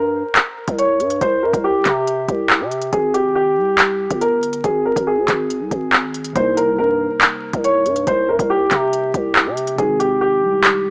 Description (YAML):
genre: hip hop, drill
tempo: 140 BPM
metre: 4/4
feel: half-time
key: C phrygian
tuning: A4 = 440 Hz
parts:
  - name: dark grand piano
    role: melody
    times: 0.0-10.9 s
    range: G4 to Db5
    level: -20 LUFS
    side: equal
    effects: low-pass filter
  - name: growling 808-style bass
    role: bass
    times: 0.0-10.9 s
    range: G1 to C3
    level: -25 LUFS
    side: equal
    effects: none
  - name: drill drum kit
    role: drums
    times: 0.4-10.7 s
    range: handclaps, hi-hat, kick drum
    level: -19 LUFS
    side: equal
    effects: overdrive
  - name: muted felt-like synth keys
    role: accompaniment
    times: 6.3-10.9 s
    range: C3 to Eb4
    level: -32 LUFS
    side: equal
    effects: chorus, low-pass filter
room: little or no reverb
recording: dry, gritty hardware recording, vinyl crackle, small speaker sound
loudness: -17 LUFS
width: mono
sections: 0.0-10.9 A section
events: none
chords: 0.0 C5; 2.9 Ab; 6.4 Cm7; 9.8 Ab